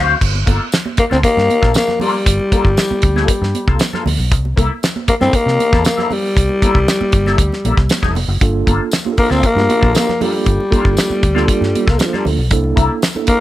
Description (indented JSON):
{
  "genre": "funk",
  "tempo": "117 BPM",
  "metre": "4/4",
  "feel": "straight",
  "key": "G dorian",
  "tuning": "A4 = 440 Hz",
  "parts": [
    { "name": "mellow electric guitar", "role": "accompaniment", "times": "0.0-13.2 s", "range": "Bb3 to E#5", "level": "-21 LUFS", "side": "left 5 dB", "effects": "wah, phaser" },
    { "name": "vintage muted fingered electric bass", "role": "bass", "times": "0.0-13.3 s", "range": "E1 to C3", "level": "-18 LUFS", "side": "equal", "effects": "none" },
    { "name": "damped 70s drum kit", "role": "drums", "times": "0.2-13.4 s", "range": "crash cymbal, hi-hat, kick drum, snare drum", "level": "-16 LUFS", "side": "equal", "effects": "none" },
    { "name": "congas", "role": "percussion", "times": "0.4-13.3 s", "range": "none", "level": "-26 LUFS", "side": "right 6 dB", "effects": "none" },
    { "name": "tambourine", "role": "percussion", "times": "0.7-13.1 s", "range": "none", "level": "-28 LUFS", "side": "left 5 dB", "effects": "none" },
    { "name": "growling alto saxophone", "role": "melody", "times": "1.0-13.4 s", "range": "F3 to C4", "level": "-16 LUFS", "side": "left 2 dB", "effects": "none" },
    { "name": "mellow tine electric piano", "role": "stabs", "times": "8.4-13.4 s", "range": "A3 to A4", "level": "-20 LUFS", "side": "right 6 dB", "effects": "medium stereo tremolo" }
  ],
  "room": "small room ambience",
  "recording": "none",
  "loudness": "-12 LUFS",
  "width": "side -15 dB against mid",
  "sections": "0.2-13.4 A section",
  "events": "band accent 0.0",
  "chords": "0.2 Gm9; 4.3 C13; 8.4 Gm9; 12.5 C13",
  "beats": "| 0.22 0.73 1.24 1.75 | 2.27 2.78 3.29 3.80 | 4.31 4.83 5.34 5.85 | 6.36 6.87 7.39 7.90 | 8.41 8.92 9.44 9.95 | 10.46 10.97 11.49 12.00 | 12.51 13.03"
}